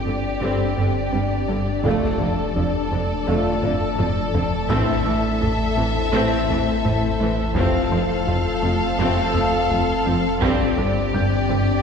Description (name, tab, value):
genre	cinematic, hybrid orchestral and electronic film score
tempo	84 BPM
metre	4/4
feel	straight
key	A minor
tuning	A4 = 440 Hz
part	warm symphonic violin section	melody	0.0-11.8 s	D5 to F5	-28 LUFS	left 3 dB	none
part	warm symphonic violin section	second line	0.0-11.8 s	G4 to A4	-27 LUFS	left 1 dB	none
part	glassy FM pad	sustained chords	0.0-11.8 s	A3 to D5	-27 LUFS	left 3 dB	ensemble chorus, built-in reverb
part	punchy sub bass	bass	0.0-11.8 s	F1 to A1	-30 LUFS	equal	none
part	felt-muted upright piano	texture	0.0-11.8 s	E6 to G6	-35 LUFS	left 1 dB	ping-pong delay
part	warm symphonic viola section	accompaniment	0.1-11.6 s	D3 to C4	-29 LUFS	right 1 dB	none
part	tight sequenced synth	arpeggios	0.1-11.7 s	D3 to A4	-31 LUFS	equal	none
part	rubbery square bass	riff	0.1-11.7 s	F2 to A3	-27 LUFS	right 1 dB	none
part	rich symphonic double bass section	bass	0.1-11.6 s	F1 to A1	-29 LUFS	right 2 dB	none
part	warm symphonic cello section	bass	0.1-11.6 s	F2 to A2	-30 LUFS	right 2 dB	none
part	dark trombone section	sustained chords	0.4-10.7 s	C3 to A3	-33 LUFS	right 1 dB	none
part	warm French horn section	sustained chords	0.4-10.7 s	C4 to G4	-31 LUFS	left 2 dB	none
part	taiko ensemble	drums	1.9-11.5 s	none	-29 LUFS	equal	none
room	wet concert hall reverb, RT60 1.9 s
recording	heard from further back in the room, faint mains hum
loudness	-18 LUFS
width	side -6 dB against mid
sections	0.0-11.8 A section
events	drum fill 3.6-4.7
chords	0.0 Gsus4; 1.9 Dm/F; 4.7 Am; 7.6 F; 10.4 Gsus4